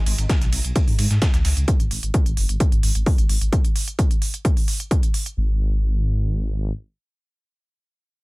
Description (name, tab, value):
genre	driving peak-time techno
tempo	130 BPM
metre	4/4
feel	straight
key	G# minor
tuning	A4 = 440 Hz
part	detuned saw bass	bass	0.0-6.7 s	F#1 to G#2	-21 LUFS	equal	sidechain pumping
part	dusty soul sampler-style drum kit	drums	0.1-1.6 s	ride cymbal, snare drum	-32 LUFS	right 2 dB	sidechain pumping on cymbals, high-pass filter on cymbals, high-pass filter on snare
part	electronic hi-hat	drums	0.1-5.3 s	none	-28 LUFS	right 2 dB	sidechain pumping on hats, sidechain pumping on perc, sidechain pumping on toms, sidechain pumping on cymbals
part	electronic kick drum	drums	0.3-5.0 s	none	-19 LUFS	equal	none
room	little or no reverb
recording	none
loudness	-18 LUFS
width	side -24 dB against mid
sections	0.0-5.4 A section; 5.4-8.2 B section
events	none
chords	none